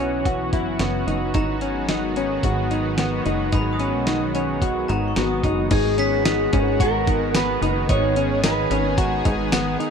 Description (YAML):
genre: dream pop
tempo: 110 BPM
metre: 4/4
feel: straight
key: G# minor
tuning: A4 = 439 Hz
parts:
  - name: lush unison pad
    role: sustained chords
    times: 0.0-9.9 s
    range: D#3 to G#4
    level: -26 LUFS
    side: equal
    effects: chorus, low-pass filter
  - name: semi-hollow electric guitar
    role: arpeggios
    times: 0.0-9.9 s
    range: B3 to F#4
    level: -25 LUFS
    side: left 2 dB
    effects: analog chorus, low-pass filter, tape echo
  - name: plucky analog bass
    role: bass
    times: 0.0-9.8 s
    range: F#1 to B1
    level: -26 LUFS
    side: equal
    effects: none
  - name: glockenspiel with hard plastic mallets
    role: texture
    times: 0.0-9.9 s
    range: A#5 to B6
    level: -34 LUFS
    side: right 1 dB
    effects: tape echo
  - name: dusty soul sampler-style drum kit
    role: drums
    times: 0.3-9.9 s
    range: crash cymbal, hi-hat, kick drum, snare drum, tambourine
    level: -24 LUFS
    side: equal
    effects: none
  - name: electric guitar at the edge of break-up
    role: melody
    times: 5.2-8.9 s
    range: F#4 to C#5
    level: -23 LUFS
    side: equal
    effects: tape echo
room: moderate echo chamber reverb, RT60 1.6 s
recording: dark, warm production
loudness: -19 LUFS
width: side -6 dB against mid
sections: 0.0-5.7 A section; 5.7-9.9 B section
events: none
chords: 0.0 F#7sus4; 1.4 G#m9